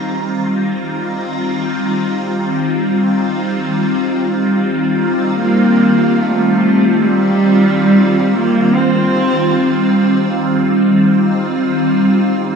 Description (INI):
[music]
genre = ambient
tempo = free time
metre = none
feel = none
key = unclear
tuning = A4 = 442 Hz
[part]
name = evolving wavetable pad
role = sustained chords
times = 0.0-12.6 s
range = Eb3 to Bb5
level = -13 LUFS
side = equal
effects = ensemble chorus, built-in reverb, phaser
[part]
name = warm cello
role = melody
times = 5.4-10.0 s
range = G3 to C4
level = -14 LUFS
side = equal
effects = tape echo
[sound]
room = wet plate reverb, RT60 2.6 s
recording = dreamy mix soaked in reverb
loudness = -12 LUFS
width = side -6 dB against mid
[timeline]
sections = 0.0-5.4 A section; 5.4-12.6 B section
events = none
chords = 0.0 Eb6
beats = free time